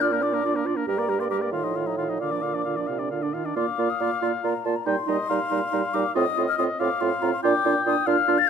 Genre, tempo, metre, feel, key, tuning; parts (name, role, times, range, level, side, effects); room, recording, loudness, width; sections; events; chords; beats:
quick classical-period movement for wind quintet; 93 BPM (dotted quarters); 6/8; rubato; Bb major; A4 = 441 Hz
mellow hollow concert flute; melody; 0.0-8.5 s; A5 to A6; -27 LUFS; left 9 dB
warm oboe; second line; 0.0-8.5 s; Bb4 to G5; -29 LUFS; left 4 dB
clear French horn; accompaniment; 0.0-8.4 s; C3 to D4; -31 LUFS; equal
clear clarinet; accompaniment; 0.0-8.4 s; D4 to Bb4; -28 LUFS; right 10 dB
mellow bassoon; bass; 0.0-8.4 s; G2 to Bb2; -28 LUFS; right 3 dB
moderate recital hall reverb, RT60 1.6 s; close, detailed microphones; -22 LUFS; side -7 dB against mid
0.0-3.6 A section; 3.6-8.5 A section
0.0 Bb; 0.9 Gm; 1.5 F7/A; 2.2 Bb; 3.6 Bb5; 4.9 Eb/Bb; 6.2 F7/A; 7.4 Bb
0.23 | 0.87 1.53 | 2.20 2.88 | 3.56 4.22 | 4.86 5.51 | 6.16 6.80 | 7.44 8.07